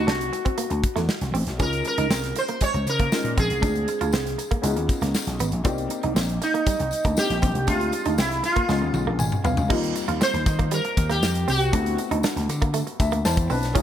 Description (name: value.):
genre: polished 1980s jazz-funk pop.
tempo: 118 BPM.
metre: 4/4.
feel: straight.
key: unclear.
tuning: A4 = 440 Hz.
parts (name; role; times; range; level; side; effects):
sitar; melody; 0.0-12.0 s; Eb4 to Db5; -26 LUFS; right 1 dB; none.
warm baby grand piano; accompaniment; 0.0-13.8 s; G3 to A5; -30 LUFS; left 4 dB; lush chorus.
semi-hollow electric guitar; riff; 0.0-13.8 s; G3 to F4; -30 LUFS; right 7 dB; analog chorus.
vintage slap bass; bass; 0.0-13.8 s; Ab1 to Eb3; -26 LUFS; equal; none.
modern studio drum kit; drums; 0.1-13.8 s; crash cymbal, hi-hat, kick drum, snare drum, toms; -26 LUFS; equal; none.
tambourine; percussion; 1.6-13.8 s; none; -38 LUFS; left 9 dB; none.
room: little or no reverb.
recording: none.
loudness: -21 LUFS.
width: side -10 dB against mid.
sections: 0.0-9.7 A section; 9.7-13.8 B section.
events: drum fill 8.7-9.7; grand piano fill 8.9-9.7, 12.7-13.8.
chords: 0.0 D13; 1.6 Db69; 3.6 Dm7b5; 4.6 Db9; 5.7 Cm9; 7.7 Dm7b5; 8.7 Db9; 9.7 Eb69; 11.7 D13.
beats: 0.07 0.58 1.09 | 1.59 2.10 2.61 3.12 | 3.62 4.13 4.64 5.14 | 5.65 6.16 6.67 7.17 | 7.68 8.19 8.69 9.20 | 9.71 10.21 10.72 11.23 | 11.73 12.24 12.74 13.25 | 13.76.